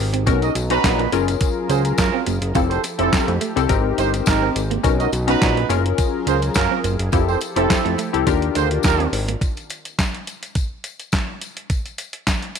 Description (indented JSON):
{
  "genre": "early-eighties boogie funk",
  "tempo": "105 BPM",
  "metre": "4/4",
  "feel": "straight",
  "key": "unclear",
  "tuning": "A4 = 440 Hz",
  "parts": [
    { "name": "funky polysynth comp", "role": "accompaniment", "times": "0.0-9.2 s", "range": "C4 to A#5", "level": "-22 LUFS", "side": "left 14 dB", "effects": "chorus" },
    { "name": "chorused pulse-width pad", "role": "sustained chords", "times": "0.0-9.4 s", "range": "Eb3 to Bb4", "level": "-30 LUFS", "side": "equal", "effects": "none" },
    { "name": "fat analog bass", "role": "bass", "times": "0.0-9.4 s", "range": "F1 to Gb2", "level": "-22 LUFS", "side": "equal", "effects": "none" },
    { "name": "clean electric guitar", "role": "riff", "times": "0.1-9.4 s", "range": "A3 to F4", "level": "-28 LUFS", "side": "right 14 dB", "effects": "ensemble chorus" },
    { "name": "detuned 8-bit digital drum machine", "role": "drums", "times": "0.1-12.6 s", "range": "handclaps, hi-hat, kick drum, snare drum", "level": "-22 LUFS", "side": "equal", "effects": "none" },
    { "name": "tambourine", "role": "percussion", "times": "0.3-12.6 s", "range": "none", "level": "-36 LUFS", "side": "left 12 dB", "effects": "none" },
    { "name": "mellow horn section", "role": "second line", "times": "0.4-9.1 s", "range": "C4 to D#5", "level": "-23 LUFS", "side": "right 14 dB", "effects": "none" }
  ],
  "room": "light reverb",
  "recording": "1960s-style stereo with parts hard left and right",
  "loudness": "-17 LUFS",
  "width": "side -7 dB against mid",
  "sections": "0.0-9.4 A section; 9.4-12.6 B section",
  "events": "none",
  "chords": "0.3 Bmaj9; 1.1 Gbmaj9; 2.6 Fmaj9; 3.7 Abmaj9; 4.8 Bmaj9; 5.7 Gbmaj9; 7.1 Fmaj9; 8.3 Ebmaj9; 9.4 N.C."
}